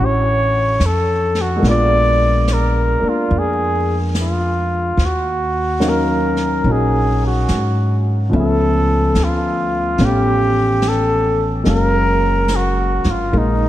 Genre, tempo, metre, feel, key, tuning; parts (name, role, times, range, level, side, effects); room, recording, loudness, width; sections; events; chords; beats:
jazz; 72 BPM; 4/4; swing 66% on 8ths; F# major; A4 = 439 Hz
breathy trumpet; melody; 0.0-13.7 s; D#4 to D5; -18 LUFS; equal; tape echo
warm concert grand piano; accompaniment; 0.0-13.7 s; E3 to E#5; -20 LUFS; left 1 dB
upright bass; bass; 0.0-13.7 s; F#1 to G#2; -18 LUFS; equal
vintage brush drum kit; drums; 0.8-13.7 s; brushed snare drum, hi-hat, snare drum; -29 LUFS; equal
moderate lush hall reverb, RT60 2.1 s; dreamy mix soaked in reverb, vinyl crackle; -14 LUFS; side -13 dB against mid
0.0-13.7 A section
0.0 Dmaj9; 1.6 A#7b9; 5.0 D#m9; 8.3 C#7alt; 11.7 F#maj9
0.79 | 1.62 2.46 3.29 4.13 | 4.97 5.80 6.64 7.48 | 8.31 9.15 9.98 10.82 | 11.65 12.49 13.32